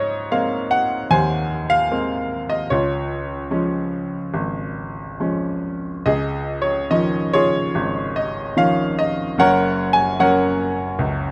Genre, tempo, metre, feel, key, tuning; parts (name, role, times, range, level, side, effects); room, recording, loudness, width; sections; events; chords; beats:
classical, lyrical solo piano; 66-77 BPM; 4/4; rubato; Db major; A4 = 442 Hz
bright baby grand piano; solo; 0.0-11.3 s; Gb1 to Ab5; -21 LUFS; equal
light reverb; close, detailed microphones; -21 LUFS; mono
0.0-6.1 A section; 6.1-11.3 A section
0.0 Abadd9; 2.7 Db; 6.1 Dbadd9; 9.4 Gb
0.31 1.10 1.90 | 2.71 3.51 4.33 5.20 | 6.07 6.91 7.75 8.57 | 9.39 10.19 10.99